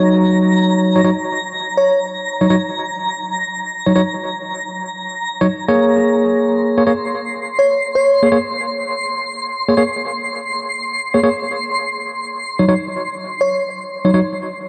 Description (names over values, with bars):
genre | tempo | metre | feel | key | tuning
drum and bass | 165 BPM | 4/4 | straight | Bb minor | A4 = 441 Hz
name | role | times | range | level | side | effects
bright tine electric piano | stabs | 0.0-14.2 s | Gb3 to Db5 | -19 LUFS | equal | dub echo
twinkling granular texture | texture | 0.0-14.7 s | Bb5 to C6 | -25 LUFS | equal | built-in reverb
bell-like FM electric piano | melody | 1.8-2.0, 7.6-8.5, 13.4-13.6 s | Db5 | -20 LUFS | equal | chorus, tremolo, dub echo
room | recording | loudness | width
moderate plate reverb, RT60 3.5 s | dark, warm production | -17 LUFS | mono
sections
0.0-14.7 A section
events
none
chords
0.0 Ebm7; 5.9 Bbm7; 11.7 N.C.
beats
| 0.05 0.41 0.78 1.14 | 1.50 1.87 2.23 2.60 | 2.96 3.32 3.69 4.05 | 4.41 4.78 5.14 5.50 | 5.87 6.23 6.59 6.96 | 7.32 7.69 8.05 8.41 | 8.78 9.14 9.50 9.87 | 10.23 10.60 10.96 11.32 | 11.69 12.05 12.41 12.78 | 13.14 13.50 13.87 14.23 | 14.60